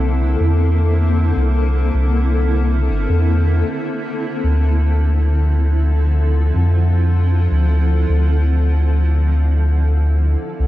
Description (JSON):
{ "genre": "ambient dub", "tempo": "78 BPM", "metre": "4/4", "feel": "straight", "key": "D minor", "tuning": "A4 = 440 Hz", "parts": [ { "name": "granular cloud pad", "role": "sustained chords", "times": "0.0-10.7 s", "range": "D3 to A4", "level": "-22 LUFS", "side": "equal", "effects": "built-in reverb" }, { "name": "soft dub sub bass", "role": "bass", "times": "0.0-10.7 s", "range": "G1 to F2", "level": "-14 LUFS", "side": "equal", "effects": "tube saturation" } ], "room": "light reverb", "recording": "none", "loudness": "-14 LUFS", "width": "side -15 dB against mid", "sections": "0.0-10.7 A section", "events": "none", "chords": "0.0 C13; 4.4 Dm9", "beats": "0.59 | 1.36 2.13 2.90 3.67 | 4.44 5.21 5.98 6.75 | 7.51 8.28 9.05 9.82 | 10.59" }